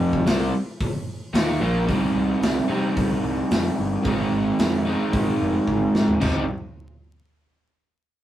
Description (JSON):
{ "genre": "classic rock", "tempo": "111 BPM", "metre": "4/4", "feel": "straight", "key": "C minor", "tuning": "A4 = 441 Hz", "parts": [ { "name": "crunchy overdriven guitar", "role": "riff", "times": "0.0-6.4 s", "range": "F2 to Eb4", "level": "-21 LUFS", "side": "right 1 dB", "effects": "none" }, { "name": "fuzz picked electric bass", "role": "bass", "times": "0.0-6.5 s", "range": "F1 to C3", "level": "-29 LUFS", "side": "equal", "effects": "overdrive" }, { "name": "big rock drum kit", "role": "drums", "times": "0.1-6.3 s", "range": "hi-hat, kick drum, snare drum, splash cymbal, toms", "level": "-26 LUFS", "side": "equal", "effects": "none" } ], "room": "wet small room reverb, RT60 0.5 s", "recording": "rough rehearsal-room recording, vinyl crackle", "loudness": "-20 LUFS", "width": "side -12 dB against mid", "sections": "0.0-1.9 A section; 1.9-6.2 B section; 6.2-8.2 C section", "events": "drum fill 5.7-6.2", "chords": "0.0 F5; 1.9 Cm; 4.0 Ab; 6.2 Cm" }